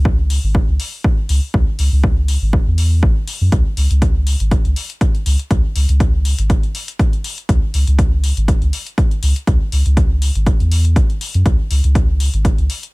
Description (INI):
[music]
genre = dub techno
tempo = 121 BPM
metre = 4/4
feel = swing 54% on 16ths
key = C# minor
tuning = A4 = 439 Hz
[part]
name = soft dub sub bass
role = bass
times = 0.0-12.7 s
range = G#1 to F#2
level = -15 LUFS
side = equal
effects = sidechain pumping
[part]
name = electronic kick drum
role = drums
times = 0.1-12.6 s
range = none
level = -15 LUFS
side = equal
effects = none
[part]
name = electronic hi-hat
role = drums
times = 0.3-12.9 s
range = none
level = -28 LUFS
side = left 4 dB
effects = none
[sound]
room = little or no reverb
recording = none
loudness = -13 LUFS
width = side -25 dB against mid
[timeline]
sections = 0.0-12.9 A section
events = none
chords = none